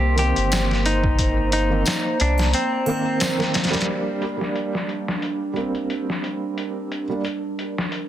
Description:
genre	trip hop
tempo	89 BPM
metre	4/4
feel	swing 55% on 16ths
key	G minor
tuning	A4 = 440 Hz
part	semi-hollow electric guitar	melody	0.0-3.5 s	C4 to G4	-25 LUFS	equal	vintage 12-bit sampler grit, tape echo
part	felt-muted upright piano	accompaniment	0.0-7.2 s	Eb3 to D4	-26 LUFS	right 2 dB	tremolo, tape echo
part	warbly tape-like pad	sustained chords	0.0-8.1 s	G3 to C6	-27 LUFS	right 2 dB	chorus, built-in reverb
part	soft dub sub bass	bass	0.0-2.5 s	G1 to C2	-21 LUFS	equal	none
part	trip hop sampler-style drum kit	drums	0.2-8.1 s	hi-hat, kick drum, snare drum	-24 LUFS	left 1 dB	low-pass filter on hats, low-pass filter on kick, low-pass filter on snare, low-pass filter on room
part	tambourine and triangle	percussion	0.5-3.4 s	none	-34 LUFS	right 2 dB	none
room	light reverb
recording	dense, heavily limited modern master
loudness	-20 LUFS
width	side -11 dB against mid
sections	0.0-3.9 A section; 3.9-8.1 B section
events	none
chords	0.0 Cm7; 3.9 Gm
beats	0.51 | 1.19 1.86 2.54 3.21 | 3.88 4.56 5.23 5.91 | 6.58 7.25 7.93

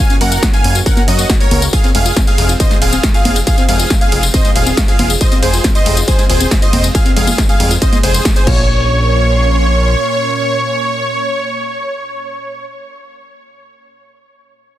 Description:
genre	uplifting trance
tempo	138 BPM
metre	4/4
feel	straight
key	Bb minor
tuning	A4 = 440 Hz
part	dense compressed supersaw	melody	0.0-12.7 s	Gb4 to Ab5	-18 LUFS	right 1 dB	sidechain pumping, digital delay
part	plucky unison lead	second line	0.0-12.7 s	C5 to Ab5	-24 LUFS	equal	sidechain pumping, digital delay
part	lush unison pad	sustained chords	0.0-12.7 s	Bb2 to C6	-24 LUFS	equal	chorus, phaser, vintage 12-bit sampler grit, sidechain pumping
part	analog pluck	arpeggios	0.0-8.9 s	Ab3 to C5	-24 LUFS	left 5 dB	chorus, sidechain pumping, digital delay
part	punchy analog drum machine	drums	0.1-8.6 s	congas, crash cymbal, hi-hat, ride cymbal, snare drum, tambourine	-17 LUFS	equal	none
part	fat analog bass	bass	0.2-10.0 s	Eb1 to Gb2	-15 LUFS	equal	sidechain pumping
part	electronic kick drum	drums	0.4-8.6 s	none	-13 LUFS	equal	distortion
room	digital ambience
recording	dense, heavily limited modern master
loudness	-10 LUFS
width	side -13 dB against mid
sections	0.0-8.7 A section; 8.7-12.2 B section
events	drop 0.0-8.7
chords	0.0 Gb; 1.7 Fm; 8.5 Bbmadd9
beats	0.43 0.86 1.30 | 1.73 2.17 2.60 3.04 | 3.47 3.90 4.34 4.77 | 5.21 5.64 6.08 6.51 | 6.95 7.38 7.82 8.25 | 8.69 9.12 9.56 9.99 | 10.43 10.86 11.30 11.73

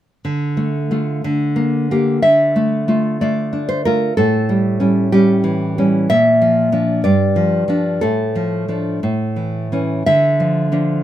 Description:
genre	romantic piece for solo classical guitar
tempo	61 BPM (dotted quarters)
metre	6/8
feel	uneven beats, rubato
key	D minor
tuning	A4 = 438 Hz
part	nylon-string guitar	solo	0.2-11.0 s	G2 to E5	-14 LUFS	equal	none
room	moderate studio reverb, RT60 0.6 s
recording	minimal, uncompressed stereo recording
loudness	-14 LUFS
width	side -12 dB against mid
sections	0.2-2.3 A section; 2.3-11.0 B section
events	none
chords	0.2 Dm; 1.2 Gm/D; 2.3 Dm; 4.2 A7; 6.1 Bb; 7.0 G5; 8.0 Dm/A; 9.0 A; 10.0 Dm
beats	| 0.24 1.25 | 2.25 3.21 | 4.16 5.10 | 6.09 7.04 | 8.03 9.03 | 10.05

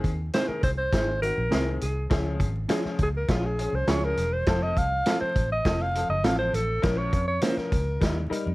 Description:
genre	uptempo 1960s-style soul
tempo	102 BPM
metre	4/4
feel	straight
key	unclear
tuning	A4 = 445 Hz
part	clear upright piano	accompaniment	0.0-8.5 s	Eb3 to Bb4	-32 LUFS	left 3 dB	none
part	vintage muted fingered electric bass	bass	0.0-8.5 s	Fb1 to F2	-29 LUFS	equal	none
part	vintage drum kit	drums	0.0-8.5 s	hi-hat, kick drum, snare drum	-27 LUFS	equal	none
part	mellow alto saxophone	melody	0.3-8.2 s	F4 to F5	-28 LUFS	equal	none
part	mellow electric guitar	stabs	0.3-7.5 s	Bb3 to Db5	-32 LUFS	right 3 dB	spring reverb
room	light reverb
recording	vinyl crackle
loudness	-23 LUFS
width	side -20 dB against mid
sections	0.0-8.5 A section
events	alto saxophone solo 0.0-8.5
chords	0.0 Ab; 2.1 Db; 4.5 F; 6.8 Bbm; 8.0 Eb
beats	0.34 0.93 1.52 | 2.11 2.70 3.29 3.88 | 4.47 5.06 5.65 6.24 | 6.83 7.42 8.01

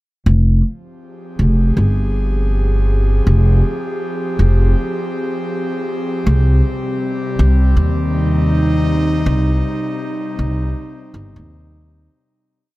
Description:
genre	ambient dub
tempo	80 BPM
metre	4/4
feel	swing 59% on 16ths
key	F minor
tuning	A4 = 439 Hz
part	airy breathy pad	sustained chords	1.0-12.3 s	C3 to Ab4	-21 LUFS	equal	chorus
part	upright bass	bass	0.3-12.1 s	F1 to Eb2	-13 LUFS	equal	none
room	little or no reverb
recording	none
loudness	-14 LUFS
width	side -18 dB against mid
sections	0.3-12.3 groove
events	fade-in on analog synth pad 0.3-12.3; fade-out 8.3-12.3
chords	0.3 Fm; 6.3 Cm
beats	| 0.26 1.01 1.76 2.51 | 3.26 4.01 4.76 5.51 | 6.26 7.01 7.76 8.51 | 9.26 10.01 10.76 11.51

